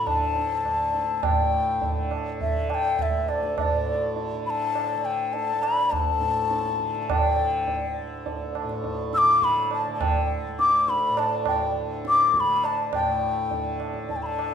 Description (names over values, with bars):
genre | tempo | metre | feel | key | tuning
indian classical, Hindustani | 103 BPM | 5/4 | straight | unclear | A4 = 439 Hz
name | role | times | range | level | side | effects
bright reedy bansuri | melody | 0.0-14.5 s | D5 to E6 | -23 LUFS | left 3 dB | none
tanpura | drone | 0.0-14.5 s | D2 to D3 | -32 LUFS | left 1 dB | none
tabla | percussion | 0.1-14.5 s | none | -28 LUFS | right 5 dB | none
room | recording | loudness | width
moderate recital hall reverb, RT60 1.4 s | minimal, uncompressed stereo recording | -22 LUFS | side -8 dB against mid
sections
0.0-1.2 A section; 1.2-12.9 B section; 12.9-14.5 C section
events
none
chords
none